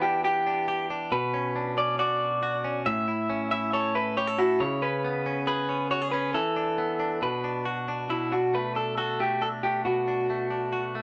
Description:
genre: indie pop.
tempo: 138 BPM.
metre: 4/4.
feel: straight.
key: B minor.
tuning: A4 = 441 Hz.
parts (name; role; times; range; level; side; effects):
electric guitar through a small old amp; melody; 0.0-11.0 s; E4 to E5; -29 LUFS; equal; none.
direct-recorded clean electric guitar; arpeggios; 0.0-11.0 s; A2 to A4; -32 LUFS; equal; none.
room: moderate studio reverb, RT60 0.8 s.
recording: band playing live in one room.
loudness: -27 LUFS.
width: mono.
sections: 0.0-8.1 A section; 8.1-11.0 B section.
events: none.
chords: 0.0 Em7; 1.1 Bmadd9; 2.9 A; 4.6 C#5; 6.3 E5; 7.2 Bm; 8.1 Bm7.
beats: 0.24 0.68 | 1.12 1.55 1.99 2.43 | 2.86 3.30 3.73 4.17 | 4.61 5.04 5.48 5.91 | 6.35 6.78 7.22 7.66 | 8.09 8.53 8.97 9.41 | 9.85 10.29 10.72.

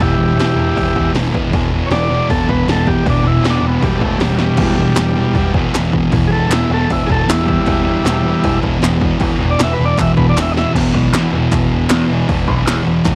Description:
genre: garage rock duo or trio.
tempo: 156 BPM.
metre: 4/4.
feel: straight.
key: E minor.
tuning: A4 = 440 Hz.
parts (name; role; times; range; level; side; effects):
overdriven combo organ; melody; 0.0-10.7 s; F#3 to E5; -21 LUFS; equal; cassette tape.
thick fuzz guitar; riff; 0.0-13.2 s; E2 to E3; -18 LUFS; equal; distortion, cassette tape.
growling picked electric bass; bass; 0.0-13.2 s; E1 to E2; -22 LUFS; equal; overdrive.
punchy analog drum machine; drums; 0.0-13.1 s; crash cymbal, hi-hat, kick drum, snare drum; -22 LUFS; equal; overdrive, cassette tape.
group handclap; percussion; 5.0-13.1 s; none; -25 LUFS; equal; none.
room: digital ambience.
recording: home recording on cassette.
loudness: -15 LUFS.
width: mono.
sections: 0.0-10.8 A section; 10.8-13.2 B section.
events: transistor combo organ solo 0.0-10.8; drum fill 4.4, 10.4-10.8.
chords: 0.0 Em.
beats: | 0.01 0.39 0.77 1.16 | 1.54 1.92 2.30 2.69 | 3.07 3.45 3.83 4.22 | 4.60 4.99 5.37 5.75 | 6.14 6.52 6.91 7.29 | 7.68 8.06 8.45 8.83 | 9.21 9.60 9.98 10.37 | 10.75 11.14 11.52 11.90 | 12.29 12.67 13.05.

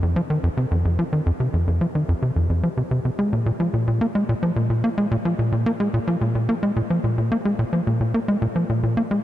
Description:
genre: ambient.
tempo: 109 BPM.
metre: 4/4.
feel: straight.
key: unclear.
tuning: A4 = 438 Hz.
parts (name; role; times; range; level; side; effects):
tight sequencer bass; solo; 0.0-9.2 s; F2 to Bb3; -19 LUFS; equal; ping-pong delay.
room: moderate huge ambient reverb, RT60 9.0 s.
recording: dark, warm production.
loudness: -19 LUFS.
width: side -13 dB against mid.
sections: 0.0-9.2 A section.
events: none.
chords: none.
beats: 0.16 0.71 | 1.26 1.82 2.37 2.92 | 3.47 4.02 4.57 5.12 | 5.67 6.22 6.77 7.32 | 7.87 8.42 8.97.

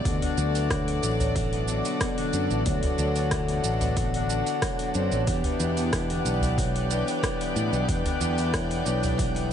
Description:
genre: organic downtempo.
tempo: 92 BPM.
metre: 4/4.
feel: straight.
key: unclear.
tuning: A4 = 440 Hz.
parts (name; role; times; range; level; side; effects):
pedal harmonium; accompaniment; 0.0-9.5 s; D3 to G5; -31 LUFS; left 4 dB; sidechain pumping, ping-pong delay.
dark studio string section; sustained chords; 0.0-9.5 s; E3 to D5; -33 LUFS; equal; sidechain pumping.
steel-string zither; arpeggios; 0.0-9.5 s; B2 to B3; -31 LUFS; left 1 dB; ping-pong delay.
fretless electric bass; bass; 0.0-9.5 s; A1 to A2; -27 LUFS; equal; none.
deep house drum kit; drums; 0.1-9.5 s; hi-hat, rim click, shaker; -33 LUFS; right 1 dB; overdrive.
electronic kick drum; drums; 0.1-9.3 s; none; -31 LUFS; equal; overdrive.
wind-like tuned noise texture; texture; 0.9-9.5 s; F#5; -40 LUFS; right 5 dB; built-in reverb.
udu; percussion; 0.2-9.2 s; none; -31 LUFS; equal; none.
room: light reverb, small room ambience.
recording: nothing above 10.4 kHz.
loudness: -23 LUFS.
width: side -9 dB against mid.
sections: 0.0-9.5 A section.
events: none.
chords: 0.1 D; 5.3 Em7.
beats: | 0.05 0.71 1.36 2.01 | 2.66 3.31 3.97 4.62 | 5.27 5.92 6.58 7.23 | 7.88 8.53 9.19.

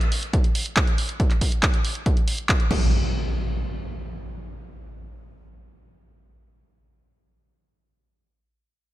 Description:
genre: uplifting trance.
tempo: 139 BPM.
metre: 4/4.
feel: straight.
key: none.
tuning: none.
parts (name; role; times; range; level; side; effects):
punchy analog drum machine; drums; 0.0-2.8 s; crash cymbal, handclaps, hi-hat; -26 LUFS; equal; sidechain pumping on hats, sidechain pumping on cymbals.
electronic kick drum; drums; 0.3-2.8 s; none; -21 LUFS; equal; none.
impact; sound effects; 2.7-7.5 s; none; -27 LUFS; equal; none.
room: little or no reverb.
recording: dark, warm production.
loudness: -20 LUFS.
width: side -15 dB against mid.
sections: 0.0-2.9 A section; 2.9-6.4 B section.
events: none.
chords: none.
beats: 0.33 0.77 | 1.20 1.63 2.06 2.49 | 2.92 3.35 3.79 4.22 | 4.65 5.08 5.51 5.95.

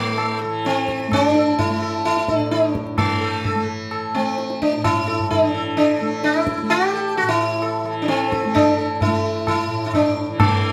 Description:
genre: indian classical, Hindustani.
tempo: 129 BPM.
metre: 4/4.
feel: straight.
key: unclear.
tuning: A4 = 439 Hz.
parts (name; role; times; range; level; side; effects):
sitar; melody; 0.0-10.7 s; A3 to A4; -21 LUFS; equal; none.
tanpura; drone; 0.0-10.7 s; A2 to A3; -30 LUFS; equal; none.
tabla; percussion; 0.2-10.6 s; none; -27 LUFS; equal; none.
room: moderate studio reverb, RT60 0.7 s.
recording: band playing live in one room.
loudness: -20 LUFS.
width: mono.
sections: 0.0-10.4 A section.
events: none.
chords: none.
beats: 0.19 0.65 | 1.12 1.59 2.05 2.52 | 2.98 3.45 3.92 4.38 | 4.84 5.31 5.77 6.24 | 6.70 7.16 7.63 8.09 | 8.55 9.01 9.47 9.93 | 10.39.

